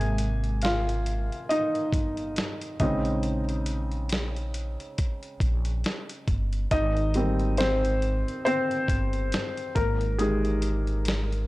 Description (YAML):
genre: lo-fi hip hop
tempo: 69 BPM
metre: 4/4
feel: swing 57% on 16ths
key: Ab major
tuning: A4 = 440 Hz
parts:
  - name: felt-muted upright piano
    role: accompaniment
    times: 0.0-11.5 s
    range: C3 to Ab5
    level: -27 LUFS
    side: equal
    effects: cassette tape
  - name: upright bass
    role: bass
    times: 0.0-11.5 s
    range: G1 to Bb1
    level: -28 LUFS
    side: equal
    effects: none
  - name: dusty soul sampler-style drum kit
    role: drums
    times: 0.0-11.5 s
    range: hi-hat, kick drum, snare drum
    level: -30 LUFS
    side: equal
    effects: vintage 12-bit sampler grit
room: small room ambience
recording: dry, gritty hardware recording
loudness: -24 LUFS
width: side -19 dB against mid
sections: 0.0-11.5 A section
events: felt piano solo 0.0-11.5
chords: 0.0 Abmaj9; 2.8 Bbm7; 6.7 Abmaj9; 9.8 Ebadd11/Ab